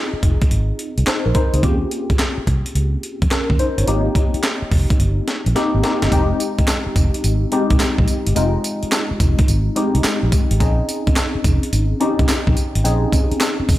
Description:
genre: R&B, new jack swing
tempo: 107 BPM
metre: 4/4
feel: swing 66% on 16ths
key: F minor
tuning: A4 = 440 Hz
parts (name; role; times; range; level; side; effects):
- mellow tine electric piano; accompaniment; 0.0-13.8 s; Ab3 to Db5; -21 LUFS; left 2 dB; phaser
- vintage muted fingered electric bass; bass; 0.1-13.8 s; F1 to F2; -19 LUFS; equal; none
- breakbeat sampler-style drum kit; drums; 0.2-13.8 s; handclaps, hi-hat, kick drum, snare drum, tambourine; -18 LUFS; equal; none
room: little or no reverb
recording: none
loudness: -15 LUFS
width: side -15 dB against mid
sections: 0.0-6.1 A section; 6.1-13.8 B section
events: drum fill 5.6-6.1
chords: 0.0 Bb9sus4; 1.6 Eb7; 3.9 Fm9

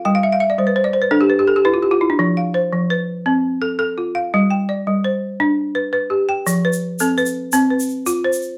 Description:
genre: west african traditional, West African string and xylophone music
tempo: 112 BPM (dotted quarters)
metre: 12/8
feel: straight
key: F lydian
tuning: A4 = 441 Hz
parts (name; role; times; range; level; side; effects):
- balafon; arpeggios; 0.0-8.6 s; F3 to G5; -18 LUFS; equal; none
- egg shaker; percussion; 6.5-8.5 s; none; -29 LUFS; equal; none
room: moderate studio reverb, RT60 0.6 s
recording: none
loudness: -18 LUFS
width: mono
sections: 0.0-6.5 A section; 6.5-8.6 B section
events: balafon fill 0.0-2.2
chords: 0.0 G; 2.2 F; 4.3 G; 6.5 F

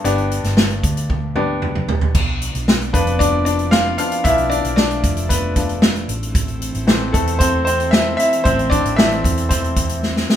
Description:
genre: piano-driven pop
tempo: 114 BPM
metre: 4/4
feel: straight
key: unclear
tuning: A4 = 440 Hz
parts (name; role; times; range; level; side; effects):
- bright upright piano; accompaniment; 0.0-10.4 s; G2 to F5; -19 LUFS; left 1 dB; none
- hollow-body short-scale fingered electric bass; bass; 0.0-10.2 s; F1 to E2; -23 LUFS; equal; none
- natural country drum kit; drums; 0.0-10.4 s; crash cymbal, hi-hat, kick drum, snare drum, toms; -18 LUFS; equal; none
- airy breathy pad; sustained chords; 2.1-10.4 s; E3 to D4; -27 LUFS; right 2 dB; chorus
room: moderate studio reverb, RT60 0.8 s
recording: band playing live in one room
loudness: -15 LUFS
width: side -10 dB against mid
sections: 0.0-2.1 A section; 2.1-10.4 B section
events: drum fill 1.1-2.1, 10.0-10.4; upright piano solo 2.1-10.4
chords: 0.0 G; 2.1 Bdim; 6.1 Am

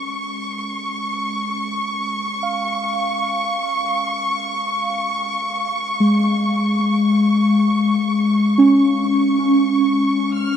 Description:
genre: ambient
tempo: free time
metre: none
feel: none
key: unclear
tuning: A4 = 440 Hz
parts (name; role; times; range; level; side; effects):
- muted felt-like synth keys; arpeggios; 0.0-10.6 s; Ab3 to F5; -18 LUFS; equal; chorus, tape echo
- warm studio violin section; texture; 0.0-10.6 s; Db6 to F6; -23 LUFS; equal; none
room: wet huge ambient reverb, RT60 9.1 s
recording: in a vast, echoing space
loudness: -16 LUFS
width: side -9 dB against mid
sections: 0.0-10.6 A section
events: none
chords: 0.0 Db/Ab

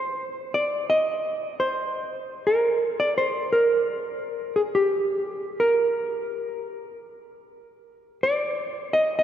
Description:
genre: jazz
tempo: 114 BPM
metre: 4/4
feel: swing 66% on 8ths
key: C minor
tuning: A4 = 442 Hz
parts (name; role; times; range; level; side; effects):
- hollow-body jazz guitar; solo; 0.0-9.2 s; G4 to Eb5; -22 LUFS; equal; none
room: wet cathedral reverb, RT60 4.6 s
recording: recorded in a church or concert hall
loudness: -22 LUFS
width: side -10 dB against mid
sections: 0.0-9.2 A section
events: none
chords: none

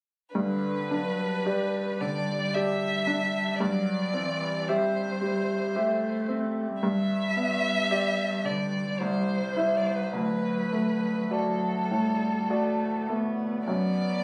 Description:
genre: classical, slow romantic movement for piano trio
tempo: 50-57 BPM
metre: 3/4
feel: rubato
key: G major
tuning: A4 = 440 Hz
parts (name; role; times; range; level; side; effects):
- warm violin; melody; 0.4-14.2 s; A4 to E5; -33 LUFS; equal; none
- warm cello; second line; 0.4-14.2 s; D3 to B3; -34 LUFS; equal; none
- bright concert grand piano; accompaniment; 0.4-14.2 s; C2 to E5; -30 LUFS; equal; none
room: light reverb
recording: recorded on a phone in the room, studio ambience, compression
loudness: -28 LUFS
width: mono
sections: 0.3-14.2 A section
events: none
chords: 0.3 G; 3.6 C/G; 6.8 G; 9.0 C; 10.1 D; 13.7 D/F#

